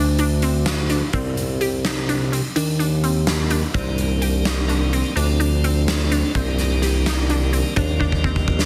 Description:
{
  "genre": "progressive instrumental, band music in an uneven meter",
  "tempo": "253 BPM (eighths)",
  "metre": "11/8",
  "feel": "straight",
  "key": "C dorian",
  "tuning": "A4 = 439 Hz",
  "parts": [
    { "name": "glassy wavetable pluck", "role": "arpeggios", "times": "0.0-8.6 s", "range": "C4 to G4", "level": "-28 LUFS", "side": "equal", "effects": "chorus, phaser" },
    { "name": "smooth synth bass", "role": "bass", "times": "0.0-8.7 s", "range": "C2 to Eb2", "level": "-22 LUFS", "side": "equal", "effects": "none" },
    { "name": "big rock drum kit", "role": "drums", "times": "0.2-8.7 s", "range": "hi-hat, kick drum, snare drum", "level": "-26 LUFS", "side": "equal", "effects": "none" },
    { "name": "tonewheel organ", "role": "accompaniment", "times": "3.7-8.7 s", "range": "Eb3 to D4", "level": "-29 LUFS", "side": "equal", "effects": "slow rotary speaker" }
  ],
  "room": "studio reverb",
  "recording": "dense, heavily limited modern master",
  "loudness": "-20 LUFS",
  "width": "mono",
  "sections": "0.0-8.7 A section",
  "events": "drum fill 8.0-8.7",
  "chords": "0.0 Csus2/D; 1.1 Cm; 2.6 Cmadd9/Eb; 3.7 Cm7; 5.2 Dm7; 6.3 Cm7; 7.8 Ebmaj7",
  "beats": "0.19 0.43 0.67 0.91 | 1.14 1.38 1.61 1.85 2.09 2.33 2.56 2.80 3.04 3.27 3.51 | 3.75 3.98 4.22 4.46 4.69 4.93 5.17 5.40 5.64 5.88 6.11 | 6.35 6.59 6.82 7.06 7.30 7.54 7.77 8.01 8.24 8.48"
}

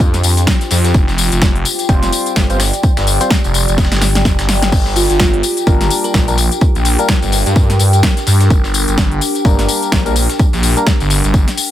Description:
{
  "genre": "bass house",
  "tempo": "127 BPM",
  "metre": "4/4",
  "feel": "swing 58% on 16ths",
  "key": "G minor",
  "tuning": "A4 = 440 Hz",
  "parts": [
    { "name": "phased detuned saw bass", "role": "bass", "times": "0.0-11.5 s", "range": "F1 to G2", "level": "-14 LUFS", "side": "equal", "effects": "phaser, overdrive, sidechain pumping" },
    { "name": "big-room dance drum kit", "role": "drums", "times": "0.0-11.7 s", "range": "crash cymbal, hi-hat, snare drum, tambourine", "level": "-18 LUFS", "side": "left 2 dB", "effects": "overdrive" },
    { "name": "dusty soul sampler-style drum kit", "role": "drums", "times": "0.0-11.7 s", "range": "hi-hat, snare drum", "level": "-26 LUFS", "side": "left 1 dB", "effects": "sidechain pumping on hats, high-pass filter on hats, high-pass filter on snare" },
    { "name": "electronic kick drum", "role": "drums", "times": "0.0-11.4 s", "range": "none", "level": "-13 LUFS", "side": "equal", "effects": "overdrive" },
    { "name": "warbly tape-like pad", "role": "texture", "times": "0.0-11.7 s", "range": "D4 to G5", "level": "-21 LUFS", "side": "left 2 dB", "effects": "chorus, built-in reverb, sidechain pumping" },
    { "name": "percussive organ stab", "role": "stabs", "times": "1.9-10.9 s", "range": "G3 to C5", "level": "-21 LUFS", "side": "left 2 dB", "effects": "chorus, sidechain pumping, digital delay" },
    { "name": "kalimba", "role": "melody", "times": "5.0-6.7 s", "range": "F4 to Bb4", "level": "-22 LUFS", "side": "right 3 dB", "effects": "vintage 12-bit sampler grit, digital delay" }
  ],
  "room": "little or no reverb",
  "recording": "none",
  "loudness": "-11 LUFS",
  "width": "side -12 dB against mid",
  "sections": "0.0-11.7 A section",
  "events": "drum fill 3.8-4.7",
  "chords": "0.0 Fsus2; 4.7 Gm",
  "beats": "0.00 0.47 | 0.94 1.42 1.89 2.36 | 2.83 3.31 3.78 4.25 | 4.72 5.20 5.67 6.14 | 6.61 7.09 7.56 8.03 | 8.50 8.98 9.45 9.92 | 10.39 10.87 11.34"
}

